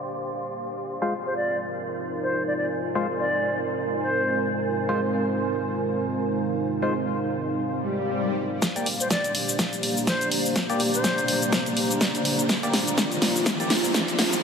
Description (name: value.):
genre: bass house.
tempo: 124 BPM.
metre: 4/4.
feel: swing 57% on 16ths.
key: G phrygian.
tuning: A4 = 440 Hz.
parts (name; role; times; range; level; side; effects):
dark analog pad; sustained chords; 0.0-14.4 s; Ab3 to D5; -28 LUFS; right 1 dB; chorus, sidechain pumping.
warbly tape-like pad; texture; 0.0-14.4 s; Eb4 to C6; -31 LUFS; right 2 dB; chorus, built-in reverb, sidechain pumping.
percussive organ stab; stabs; 1.0-13.7 s; Ab3 to D5; -32 LUFS; left 2 dB; chorus, sidechain pumping, diffuse ambient delay.
reedy concert flute; melody; 1.3-4.4, 9.0-11.6 s; C5 to D5; -30 LUFS; equal; diffuse ambient delay.
swell and riser; sound effects; 7.8-14.4 s; none; -33 LUFS; left 2 dB; none.
big-room dance drum kit; drums; 8.6-14.4 s; hi-hat, shaker, snare drum; -24 LUFS; equal; none.
electronic kick drum; drums; 8.6-14.1 s; none; -29 LUFS; equal; high-pass filter on kick.
room: wet huge ambient reverb, RT60 8.3 s.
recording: dreamy mix soaked in reverb, high-pass filter, low-pass filter.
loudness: -22 LUFS.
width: side -6 dB against mid.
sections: 0.0-8.6 A section; 8.6-14.4 B section.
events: filter sweep on analog synth pad 0.0-8.6; swell 7.8-8.6; build-up 8.6-14.4; drum fill 8.6-14.4; riser 8.6-14.4.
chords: 0.0 Gm; 0.9 Fm; 8.6 Gm.